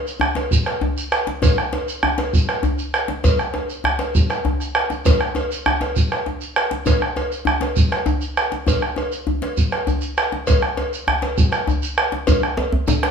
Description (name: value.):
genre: west african traditional, West African drum ensemble.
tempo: 133 BPM (dotted quarters).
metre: 12/8.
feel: straight.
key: none.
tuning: none.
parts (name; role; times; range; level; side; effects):
shekere; percussion; 0.1-13.1 s; none; -28 LUFS; right 4 dB; none.
bombo; percussion; 0.2-13.1 s; none; -19 LUFS; right 1 dB; none.
djembe; percussion; 0.2-13.1 s; none; -23 LUFS; left 2 dB; none.
cowbell; percussion; 0.4-13.1 s; none; -25 LUFS; equal; none.
djembe; percussion; 12.6-13.0 s; none; -21 LUFS; right 1 dB; none.
room: moderate large studio reverb, RT60 0.9 s.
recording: band playing live in one room, small room ambience.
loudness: -18 LUFS.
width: side -7 dB against mid.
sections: 0.0-12.3 A section.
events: none.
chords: none.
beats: 0.06 0.51 0.96 | 1.42 1.87 2.33 2.78 | 3.24 3.69 4.14 4.60 | 5.05 5.50 5.96 6.41 | 6.86 7.31 7.76 8.22 | 8.67 9.12 9.57 10.02 | 10.47 10.93 11.38 11.83 | 12.28 12.73.